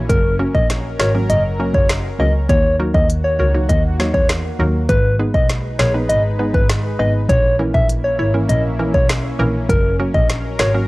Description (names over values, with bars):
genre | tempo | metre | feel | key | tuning
dancehall | 100 BPM | 4/4 | straight | G# minor | A4 = 440 Hz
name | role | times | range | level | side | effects
lush unison pad | sustained chords | 0.0-10.9 s | D#3 to B4 | -28 LUFS | equal | chorus, sidechain pumping
soft struck synth lead | melody | 0.1-10.7 s | A#4 to E5 | -20 LUFS | left 1 dB | chorus, analog delay
warm double bass | bass | 0.1-10.9 s | F#1 to E2 | -18 LUFS | equal | none
afro-pop drum kit | drums | 0.1-10.7 s | hi-hat, kick drum, snare drum | -18 LUFS | equal | none
hollow square pluck | accompaniment | 0.4-10.9 s | E3 to C#5 | -23 LUFS | right 1 dB | chorus
room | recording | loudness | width
little or no reverb | dry, gritty hardware recording, cassette tape | -14 LUFS | side -21 dB against mid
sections
0.0-10.9 A section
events
none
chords
0.1 F#; 2.5 D#m; 4.9 G#m; 7.3 A#dim; 9.7 F#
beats
| 0.09 0.69 1.29 1.89 | 2.49 3.09 3.69 4.29 | 4.89 5.49 6.09 6.69 | 7.29 7.89 8.49 9.09 | 9.69 10.29